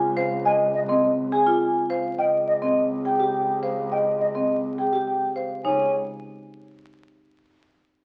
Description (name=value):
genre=classical, minimalist pattern music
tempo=104 BPM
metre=3/4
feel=straight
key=Db lydian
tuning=A4 = 438 Hz
part: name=vibraphone with soft mallets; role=melody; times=0.0-5.9 s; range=G4 to Ab5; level=-25 LUFS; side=equal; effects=none
part: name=rich double bass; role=bass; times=0.0-5.9 s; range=Db2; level=-36 LUFS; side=equal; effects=none
part: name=marimba with medium mallets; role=arpeggios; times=0.2-5.9 s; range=C4 to C5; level=-29 LUFS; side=equal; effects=none
part: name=mellow hollow silver concert flute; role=arpeggios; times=0.5-5.9 s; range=Eb5 to Ab5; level=-28 LUFS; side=equal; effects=none
room=moderate large studio reverb, RT60 1.2 s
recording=very old 78 rpm record, vinyl crackle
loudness=-23 LUFS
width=mono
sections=0.0-5.6 A section; 5.6-8.0 B section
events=none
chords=0.0 Dbmaj7(no3); 2.2 Abmaj7/Db (rootless); 5.6 Db5